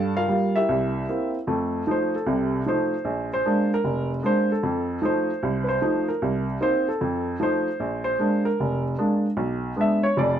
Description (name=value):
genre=solo jazz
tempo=152 BPM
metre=4/4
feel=swing 65% on 8ths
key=unclear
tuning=A4 = 440 Hz
part: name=warm upright piano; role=solo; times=0.0-10.4 s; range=F1 to A5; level=-21 LUFS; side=right 1 dB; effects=none
room=moderate studio reverb, RT60 0.8 s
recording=dark, warm production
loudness=-22 LUFS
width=side -9 dB against mid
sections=0.0-1.5 A section; 1.5-10.4 B section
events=upright piano solo 1.5-10.4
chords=0.0 Gm7; 0.7 C7; 1.5 F7; 3.1 Bb7; 4.6 F7; 6.2 Cm7; 7.0 F7; 7.8 Bb7; 9.4 Bdim7